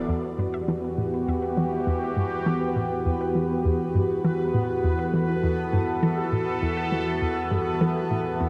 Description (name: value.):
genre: ambient, sequencer-driven space music.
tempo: 101 BPM.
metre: 4/4.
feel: straight.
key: E minor.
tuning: A4 = 444 Hz.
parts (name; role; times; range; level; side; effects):
sweeping resonant pad; sustained chords; 0.0-8.5 s; E2 to A4; -28 LUFS; equal; chorus.
unison pluck; arpeggios; 0.0-8.5 s; E4 to B4; -43 LUFS; equal; none.
hollow square pluck; riff; 0.0-8.5 s; E2 to E3; -29 LUFS; equal; chorus, phaser, delay.
bubbling stepped-filter texture; texture; 0.0-8.5 s; B3 to D5; -36 LUFS; equal; chorus, built-in reverb.
room: wet concert hall reverb, RT60 2.1 s.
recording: dark, warm production.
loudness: -25 LUFS.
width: mono.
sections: 0.1-8.5 A section.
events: none.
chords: 0.1 Emadd9.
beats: | 0.09 0.68 1.27 1.87 | 2.46 3.06 3.65 4.25 | 4.84 5.43 6.03 6.62 | 7.22 7.81 8.40.